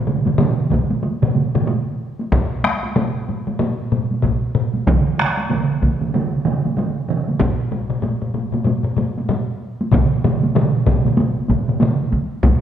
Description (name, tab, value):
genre	japanese traditional, taiko drum ensemble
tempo	95 BPM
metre	4/4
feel	swing 60% on 16ths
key	none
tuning	none
part	taiko ensemble	percussion	0.1-12.6 s	none	-23 LUFS	equal	none
part	taiko ensemble	percussion	0.1-12.6 s	none	-20 LUFS	left 2 dB	none
part	taiko ensemble	percussion	0.1-12.0 s	none	-20 LUFS	right 4 dB	none
part	taiko ensemble	percussion	0.7-12.6 s	none	-20 LUFS	equal	none
room	wet scoring stage reverb, RT60 1.7 s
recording	none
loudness	-16 LUFS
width	side -9 dB against mid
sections	0.0-12.4 A section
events	speeding up 0.0-12.6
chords	none